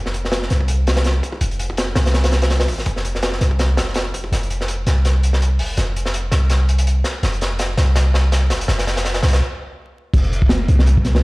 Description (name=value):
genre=drum and bass, jungle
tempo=165 BPM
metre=4/4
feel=swing 55% on 16ths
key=unclear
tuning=A4 = 444 Hz
part: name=warm 808-style bass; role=bass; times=0.0-11.2 s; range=F1 to C2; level=-17 LUFS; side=equal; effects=tube saturation
part: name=crunchy breakbeat drum kit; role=drums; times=0.1-11.2 s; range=crash cymbal, hi-hat, kick drum, snare drum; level=-20 LUFS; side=equal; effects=high-pass filter on kick, high-pass filter on hats, high-pass filter on cymbals, high-pass filter on snare, high-pass filter on room
room=light reverb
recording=played on a big sound system in a bare room, stone room reverb, vinyl crackle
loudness=-16 LUFS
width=side -24 dB against mid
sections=0.0-10.1 A section; 10.1-11.2 B section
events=build-up 0.0-10.1; drum fill 4.3-9.4; stop 9.4-10.1; drop 10.1-11.2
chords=none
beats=0.32 0.69 1.05 | 1.42 1.78 2.14 2.51 | 2.87 3.23 3.60 3.96 | 4.32 4.69 5.05 5.42 | 5.78 6.14 6.51 6.87 | 7.23 7.60 7.96 8.32 | 8.69 9.05 9.41 9.78 | 10.14 10.51 10.87